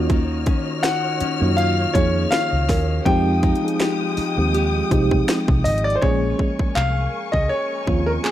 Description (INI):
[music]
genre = contemporary R&B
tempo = 81 BPM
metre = 4/4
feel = swing 54% on 16ths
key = Bb minor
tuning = A4 = 439 Hz
[part]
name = mellow FM electric piano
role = accompaniment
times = 0.0-8.3 s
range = F3 to Ab4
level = -24 LUFS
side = right 1 dB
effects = chorus, tremolo
[part]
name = warm studio string section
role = sustained chords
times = 0.0-8.3 s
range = Ab3 to F6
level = -29 LUFS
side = left 3 dB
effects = none
[part]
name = nylon-string guitar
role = arpeggios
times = 0.0-6.6 s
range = Eb3 to Bb4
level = -27 LUFS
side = left 2 dB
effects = analog delay
[part]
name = vintage muted fingered electric bass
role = bass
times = 0.0-8.2 s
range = Ab1 to Gb2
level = -22 LUFS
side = equal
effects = none
[part]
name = trap drum kit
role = drums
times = 0.1-8.3 s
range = handclaps, hi-hat, kick drum, snare drum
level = -22 LUFS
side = equal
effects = overdrive
[part]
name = clear concert grand piano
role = melody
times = 0.8-8.3 s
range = Ab4 to G5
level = -24 LUFS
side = left 1 dB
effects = none
[part]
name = small celesta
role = texture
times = 2.7-3.4 s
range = Bb4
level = -31 LUFS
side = right 5 dB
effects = none
[sound]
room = small room reverb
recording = dry, gritty hardware recording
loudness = -17 LUFS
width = side -12 dB against mid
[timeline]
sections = 0.0-6.0 A section; 6.0-8.3 B section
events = none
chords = 0.0 Ebm9; 3.1 Fm9; 6.0 Bbm9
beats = | 0.10 0.84 1.58 2.32 | 3.06 3.80 4.54 5.28 | 6.02 6.76 7.50 8.24